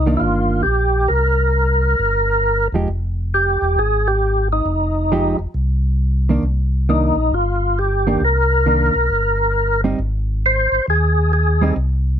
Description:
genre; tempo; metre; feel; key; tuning
jazz; 135 BPM; 4/4; swing 65% on 8ths; C minor; A4 = 441 Hz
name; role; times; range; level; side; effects
percussive tonewheel organ; melody; 0.0-11.7 s; Eb4 to C5; -17 LUFS; equal; slow rotary speaker, overdrive, chorus vibrato
mellow tonewheel organ; bass; 0.0-12.2 s; E1 to Eb2; -18 LUFS; equal; overdrive, chorus vibrato, slow rotary speaker
hollow-body jazz guitar; accompaniment; 0.1-11.8 s; Eb3 to G4; -20 LUFS; right 3 dB; none
room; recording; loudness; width
little or no reverb; close, detailed microphones; -15 LUFS; side -9 dB against mid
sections
0.0-12.2 A section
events
none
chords
0.0 Cm9; 10.0 Ab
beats
0.22 0.66 | 1.11 1.55 2.00 2.44 | 2.88 3.33 3.77 4.22 | 4.66 5.11 5.55 6.00 | 6.44 6.88 7.33 7.77 | 8.22 8.66 9.11 9.55 | 9.99 10.44 10.88 11.32 | 11.77

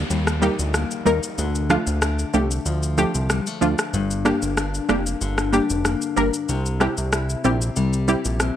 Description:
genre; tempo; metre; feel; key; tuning
dancehall; 94 BPM; 4/4; straight; G minor; A4 = 441 Hz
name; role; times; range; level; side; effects
nylon-string guitar; arpeggios; 0.0-8.6 s; G2 to E4; -27 LUFS; left 6 dB; none
fat analog bass; bass; 0.0-8.5 s; F1 to Eb2; -24 LUFS; right 1 dB; none
downlifter; sound effects; 0.0-3.9 s; none; -36 LUFS; equal; none
electronic shaker and rim click; drums; 0.1-8.6 s; none; -26 LUFS; left 1 dB; vintage 12-bit sampler grit
punchy chord stab; accompaniment; 0.4-8.2 s; F3 to Bb4; -22 LUFS; right 1 dB; chorus
room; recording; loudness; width
light reverb; none; -19 LUFS; side -10 dB against mid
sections
0.0-8.6 A section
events
break 0.0-8.6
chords
0.0 Eb; 1.4 Dm; 3.9 Gm; 6.5 C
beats
0.11 0.74 | 1.38 2.02 2.66 3.30 | 3.94 4.57 5.21 5.85 | 6.49 7.13 7.77 8.40

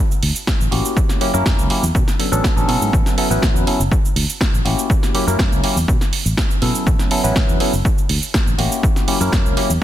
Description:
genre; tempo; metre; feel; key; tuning
filtered disco house; 122 BPM; 4/4; straight; unclear; A4 = 438 Hz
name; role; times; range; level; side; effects
punchy analog drum machine; drums; 0.1-9.8 s; hi-hat, shaker, snare drum; -22 LUFS; right 2 dB; overdrive, sidechain pumping on perc, sidechain pumping on hats
fingered electric bass; bass; 0.2-9.8 s; F#1 to B2; -20 LUFS; equal; sidechain pumping
electronic kick drum; drums; 0.5-9.4 s; none; -18 LUFS; equal; overdrive
bell-like tine electric piano; accompaniment; 0.7-9.7 s; F#3 to B4; -21 LUFS; left 1 dB; phaser, sidechain pumping
room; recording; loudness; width
digital ambience; dense, heavily limited modern master; -15 LUFS; side -12 dB against mid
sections
0.0-9.8 A section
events
none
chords
0.0 Dsus2; 1.0 F#7b9; 1.9 Bm9; 2.9 A69; 3.9 Dsus2; 4.9 F#7b9; 5.9 Bsus2; 6.9 A69; 7.8 Dsus2; 8.8 F#7b9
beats
0.47 | 0.96 1.46 1.95 2.44 | 2.93 3.42 3.92 4.41 | 4.90 5.39 5.88 6.38 | 6.87 7.36 7.85 8.34 | 8.83 9.33

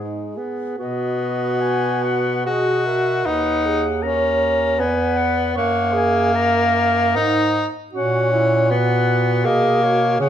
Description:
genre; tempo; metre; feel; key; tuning
classical, lyrical piece for single-reed quartet; 69-81 BPM; 3/4; rubato; B major; A4 = 441 Hz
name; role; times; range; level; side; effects
clear clarinet; melody; 0.0-10.3 s; G#4 to A#5; -26 LUFS; left 7 dB; none
clear alto saxophone; second line; 0.0-10.3 s; D#4 to C#5; -25 LUFS; right 6 dB; none
clear tenor saxophone; accompaniment; 0.0-10.3 s; G#3 to F#4; -19 LUFS; left 1 dB; none
clear bass clarinet; bass; 0.0-10.3 s; D#2 to C#3; -24 LUFS; right 2 dB; none
room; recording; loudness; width
moderate recital hall reverb, RT60 1.3 s; minimal, uncompressed stereo recording; -16 LUFS; side -10 dB against mid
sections
0.8-10.3 A section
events
none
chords
0.0 G#m; 0.8 B; 3.3 B/D#; 5.6 F#; 7.9 F#/A#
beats
| 0.79 1.61 2.46 | 3.26 4.03 4.79 | 5.57 6.35 7.16 | 7.95 8.71 9.46 | 10.20

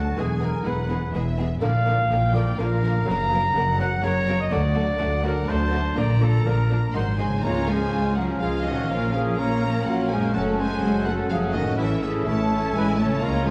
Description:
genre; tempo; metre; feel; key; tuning
cinematic, heroic adventure film score; 124 BPM; 3/4; straight; Db major from 7.4 s; A4 = 438 Hz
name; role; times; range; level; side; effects
rich studio violin section; melody; 0.0-13.5 s; D5 to C6; -38 LUFS; equal; none
rich symphonic viola section; accompaniment; 0.0-13.5 s; Db3 to E4; -34 LUFS; equal; none
concert harp; arpeggios; 0.0-13.5 s; Gb2 to Eb5; -33 LUFS; equal; none
mellow trumpet section; stabs; 0.0-13.5 s; Gb4 to Bb5; -30 LUFS; equal; none
rich symphonic double bass section; bass; 0.0-13.5 s; E1 to D2; -29 LUFS; equal; none
warm symphonic cello section; bass; 0.0-13.5 s; D2 to Bb3; -30 LUFS; equal; none
rich symphonic violin section; second line; 0.2-13.5 s; A3 to Bb4; -35 LUFS; equal; none
mellow hollow flute section; second line; 6.9-13.5 s; Eb5 to Bb5; -36 LUFS; equal; none
mellow French horn section; sustained chords; 6.9-13.5 s; Eb3 to Bb3; -32 LUFS; equal; none
mellow clarinet; second line; 7.4-13.5 s; Db4; -36 LUFS; equal; none
warm oboe; second line; 7.4-13.5 s; E5 to Gb5; -36 LUFS; equal; none
timpani; percussion; 7.4-8.1 s; Db3; -38 LUFS; equal; none
room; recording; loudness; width
wet scoring stage reverb, RT60 1.7 s; dark, warm production; -23 LUFS; mono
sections
0.0-7.4 A section; 7.4-13.5 B section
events
none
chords
0.2 E; 1.6 Bb; 3.1 Gb; 4.5 D; 6.0 Bb; 6.9 Ab7; 7.4 Db; 8.9 Bbm; 10.3 Gbm; 11.8 A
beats
| 0.19 0.67 1.15 | 1.62 2.10 2.58 | 3.07 3.55 4.03 | 4.52 5.00 5.49 | 5.97 6.46 6.95 | 7.44 7.92 8.41 | 8.89 9.38 9.86 | 10.34 10.82 11.30 | 11.79 12.27 12.75 | 13.22

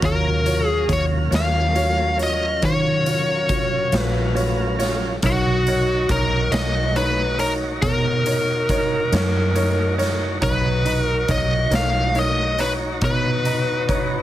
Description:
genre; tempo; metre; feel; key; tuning
slow blues; 46 BPM (dotted quarters); 12/8; straight; unclear; A4 = 440 Hz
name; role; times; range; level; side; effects
bright upright piano; accompaniment; 0.0-14.2 s; D#4 to A#5; -27 LUFS; right 1 dB; none
tonewheel organ; sustained chords; 0.0-14.2 s; Gb3 to A#5; -29 LUFS; right 1 dB; slow rotary speaker
vintage muted fingered electric bass; bass; 0.0-14.2 s; Bb1 to Eb3; -23 LUFS; equal; none
raw garage drum kit; drums; 0.0-14.1 s; hi-hat, kick drum, snare drum; -26 LUFS; equal; none
biting lead guitar; melody; 0.1-14.2 s; F#4 to F5; -22 LUFS; left 1 dB; overdrive
room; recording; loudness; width
light reverb; heavily compressed radio sound; -18 LUFS; side -13 dB against mid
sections
0.0-14.2 A section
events
none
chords
0.0 Ebm7; 5.2 Bmaj7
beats
| 0.02 1.32 2.62 3.92 | 5.22 6.52 7.82 9.12 | 10.42 11.72 13.02

